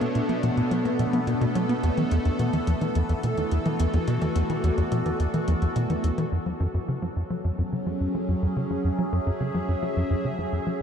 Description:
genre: ambient, sequencer-driven space music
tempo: 107 BPM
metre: 4/4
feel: straight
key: F# minor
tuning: A4 = 438 Hz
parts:
  - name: evolving wavetable pad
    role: sustained chords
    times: 0.0-10.8 s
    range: B2 to E5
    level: -28 LUFS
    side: equal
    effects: phaser, built-in reverb
  - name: tight sequencer bass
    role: riff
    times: 0.0-10.7 s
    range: E2 to B3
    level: -25 LUFS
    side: equal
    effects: analog chorus, analog delay
  - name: booming analog drum machine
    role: percussion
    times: 0.0-6.3 s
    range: hi-hat, toms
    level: -37 LUFS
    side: left 4 dB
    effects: analog delay
  - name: bubbling stepped-filter texture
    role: texture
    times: 0.0-10.8 s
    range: A3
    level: -35 LUFS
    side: right 2 dB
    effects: chorus, built-in reverb
room: moderate huge ambient reverb, RT60 8.5 s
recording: dark, warm production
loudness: -23 LUFS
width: side -8 dB against mid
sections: 0.0-6.3 A section; 6.3-10.8 B section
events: filter sweep on analog synth bass 0.0-6.3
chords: 0.0 Bm7; 1.8 E7sus4; 6.3 F#m7

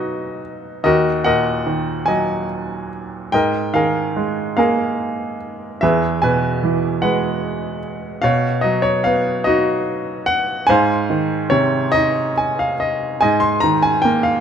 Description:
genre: classical, lyrical solo piano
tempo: 48 BPM (dotted quarters)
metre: 6/8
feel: rubato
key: unclear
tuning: A4 = 442 Hz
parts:
  - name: bright baby grand piano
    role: solo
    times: 0.0-14.4 s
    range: Eb2 to C6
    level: -16 LUFS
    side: equal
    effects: none
room: light reverb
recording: close, detailed microphones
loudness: -16 LUFS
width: side -8 dB against mid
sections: 0.0-13.2 A section; 13.2-14.4 B section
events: grand piano fill 11.9-13.2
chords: 0.0 Badd9; 0.8 Ebm; 3.3 Absus2; 5.8 Eadd9; 8.2 Badd9; 10.7 Ab6; 13.2 Absus2

